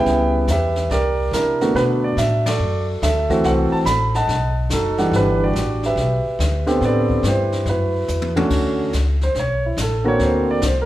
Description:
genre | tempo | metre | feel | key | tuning
jazz piano trio | 142 BPM | 4/4 | swing 66% on 8ths | unclear | A4 = 444 Hz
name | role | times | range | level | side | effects
warm grand piano | melody | 0.0-10.9 s | C#3 to B5 | -18 LUFS | right 1 dB | none
upright bass | bass | 0.0-10.9 s | F#1 to C3 | -21 LUFS | equal | none
jazz brush drum kit | drums | 0.1-10.9 s | brushed snare drum, crash cymbal, hi-hat, kick drum, ride cymbal, snare drum, toms | -28 LUFS | left 2 dB | none
room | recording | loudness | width
moderate recital hall reverb, RT60 1.4 s | recorded in a church or concert hall | -16 LUFS | side -14 dB against mid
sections
0.0-8.5 A section; 8.5-10.9 B section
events
band accent 2.4; drum fill 8.1-8.5; grand piano solo 8.5-10.9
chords
0.1 C#m7b5; 0.9 C9; 1.8 Bm7; 3.4 F#m7b5; 4.3 B7; 5.1 Em9; 6.8 Am11; 7.7 D69 (rootless); 8.5 Dmaj7; 10.2 Daug7

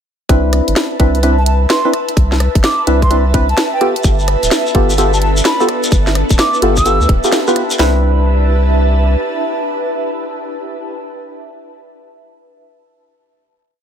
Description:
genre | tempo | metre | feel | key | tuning
UK garage, two-step garage | 128 BPM | 4/4 | swing 65% on 16ths | C major | A4 = 440 Hz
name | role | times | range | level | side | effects
percussive organ stab | stabs | 0.3-10.9 s | B3 to B4 | -17 LUFS | equal | wide subtle chorus, tape echo
saturated sub bass | bass | 0.3-9.2 s | D1 to D2 | -14 LUFS | equal | none
garage drum kit | drums | 0.3-7.9 s | kick drum, snare drum | -13 LUFS | equal | small room reverb
garage drum kit | drums | 0.3-7.8 s | hi-hat, rim click, snare drum | -18 LUFS | equal | small room reverb
airy breathy pad | texture | 0.3-11.1 s | B4 to A5 | -21 LUFS | right 2 dB | chorus, phaser, sidechain pumping
mellow hollow silver concert flute | melody | 1.4-7.1 s | G5 to E6 | -19 LUFS | right 1 dB | tape echo
soft string machine | sustained chords | 4.3-10.9 s | B3 to B4 | -23 LUFS | left 1 dB | ensemble chorus, vintage 12-bit sampler grit, sidechain pumping
shekere | percussion | 4.0-7.8 s | none | -22 LUFS | left 2 dB | none
room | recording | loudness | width
light reverb, digital ambience | none | -11 LUFS | side -8 dB against mid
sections
0.3-7.8 drop; 7.8-11.5 final chord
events
drop 0.3-7.8; band accent 7.3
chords
0.3 Cmaj9; 3.8 G9; 7.8 Cmaj9

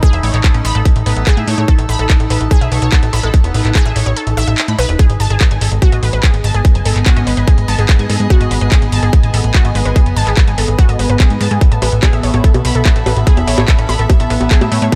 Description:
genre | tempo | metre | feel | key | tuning
psychedelic trance | 145 BPM | 4/4 | straight | unclear | A4 = 439 Hz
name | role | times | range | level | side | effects
evolving wavetable pad | sustained chords | 0.0-15.0 s | B3 to D#4 | -26 LUFS | equal | chorus, built-in reverb, sidechain pumping
unison pluck | riff | 0.0-15.0 s | F#4 to B5 | -24 LUFS | equal | sidechain pumping, dub echo
drum and bass drum kit | drums | 0.0-15.0 s | bongos, handclaps, hi-hat | -23 LUFS | equal | none
electronic kick drum | drums | 0.0-15.0 s | none | -12 LUFS | equal | none
rich studio string section | texture | 0.0-15.0 s | G#4 to E6 | -29 LUFS | equal | sidechain pumping
plucky analog bass | bass | 0.1-14.9 s | E1 to A2 | -17 LUFS | equal | none
metallic wobble bass | second line | 0.5-3.8, 6.2-14.7 s | G#3 to C#4 | -34 LUFS | equal | none
room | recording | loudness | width
little or no reverb | none | -12 LUFS | mono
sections
0.0-15.0 A section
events
fade-in on string section 0.0-15.0; break 4.2-5.0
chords
0.0 A5; 5.0 G#5; 11.6 A5

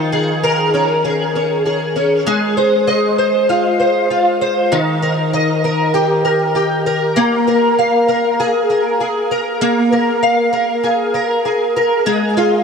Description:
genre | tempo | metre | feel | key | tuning
dream pop | 98 BPM | 4/4 | straight | Bb dorian | A4 = 444 Hz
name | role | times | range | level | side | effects
fingerpicked twelve-string acoustic guitar | solo | 0.0-12.6 s | Eb3 to F5 | -13 LUFS | equal | ensemble chorus, tape echo
room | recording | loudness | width
wet huge ambient reverb, RT60 7.5 s | none | -13 LUFS | side -6 dB against mid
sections
0.0-2.3 A section; 2.3-12.6 B section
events
none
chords
0.0 Eb7sus4; 2.3 Ab6; 4.7 Eb; 7.2 Bb5; 12.1 Ab5

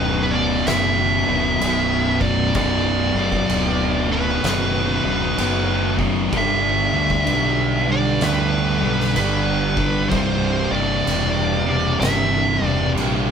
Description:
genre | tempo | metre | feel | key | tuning
stoner and doom metal | 63 BPM | 4/4 | swing 64% on 8ths | B phrygian | A4 = 441 Hz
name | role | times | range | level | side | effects
fuzz lead guitar | melody | 0.0-12.9 s | B4 to E5 | -22 LUFS | right 1 dB | distortion
sludgy distorted guitar | riff | 0.0-13.3 s | B1 to G3 | -24 LUFS | right 1 dB | overdrive
thick fuzz guitar | riff | 0.0-13.3 s | B1 to G3 | -25 LUFS | left 8 dB | distortion
thick fuzz guitar | riff | 0.0-13.3 s | B1 to G3 | -27 LUFS | right 8 dB | distortion
growling fingered electric bass | bass | 0.0-13.3 s | B0 to D2 | -24 LUFS | equal | overdrive
oversized low-tuned drum kit | drums | 0.7-13.2 s | crash cymbal, kick drum, snare drum | -27 LUFS | right 1 dB | none
room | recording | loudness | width
moderate large studio reverb, RT60 0.9 s | band playing live in one room | -17 LUFS | side -7 dB against mid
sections
0.0-13.3 A section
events
none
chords
0.0 Bm; 6.3 G; 10.1 C

